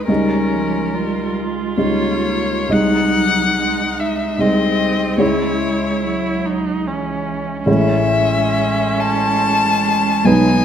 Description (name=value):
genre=classical, slow romantic movement for piano quartet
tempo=71 BPM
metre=3/4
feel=uneven beats, rubato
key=C# minor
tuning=A4 = 440 Hz
part: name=rich violin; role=melody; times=0.0-10.6 s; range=A#4 to A5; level=-20 LUFS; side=left 4 dB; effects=none
part: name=rich cello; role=second line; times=0.0-10.6 s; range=E3 to A#3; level=-24 LUFS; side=right 5 dB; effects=none
part: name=dark grand piano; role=accompaniment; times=0.0-10.6 s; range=A1 to D#5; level=-18 LUFS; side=equal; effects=none
part: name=warm viola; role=accompaniment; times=0.0-10.6 s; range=B#3 to E#4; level=-24 LUFS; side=right 4 dB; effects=none
room=moderate scoring stage reverb, RT60 1.7 s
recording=none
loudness=-15 LUFS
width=side -9 dB against mid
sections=0.0-10.6 A section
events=none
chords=0.1 D#7/C#; 2.7 G#/B#; 5.2 C#m; 7.7 Amaj7